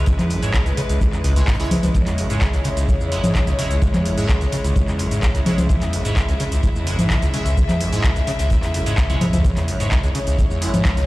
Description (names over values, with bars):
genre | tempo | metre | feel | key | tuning
acid house | 128 BPM | 4/4 | straight | C# minor pentatonic | A4 = 440 Hz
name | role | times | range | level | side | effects
bright chamber string section | sustained chords | 0.0-11.1 s | C#3 to E5 | -26 LUFS | left 1 dB | sidechain pumping
acid bass, saw | riff | 0.0-11.0 s | C#2 to C#3 | -21 LUFS | equal | ensemble chorus, cassette tape, sidechain pumping
booming analog drum machine | drums | 0.1-11.1 s | cabasa, congas, handclaps, hi-hat, toms | -24 LUFS | equal | none
cloth-damped thuddy drum kit | drums | 0.1-11.1 s | hi-hat, snare drum | -41 LUFS | left 2 dB | none
electronic kick drum | drums | 0.1-10.9 s | none | -21 LUFS | equal | none
band-passed chord stab | stabs | 0.4-10.7 s | G#3 to F#5 | -32 LUFS | right 3 dB | phaser, digital delay
room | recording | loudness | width
light reverb, small room ambience | played on a big sound system in a bare room, large studio reverb | -16 LUFS | side -18 dB against mid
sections
0.0-11.1 A section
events
drum fill 9.1-9.4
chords
0.0 C#m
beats
| 0.07 0.54 1.01 1.48 | 1.95 2.42 2.88 3.35 | 3.82 4.29 4.76 5.23 | 5.70 6.17 6.63 7.10 | 7.57 8.04 8.51 8.98 | 9.45 9.91 10.38 10.85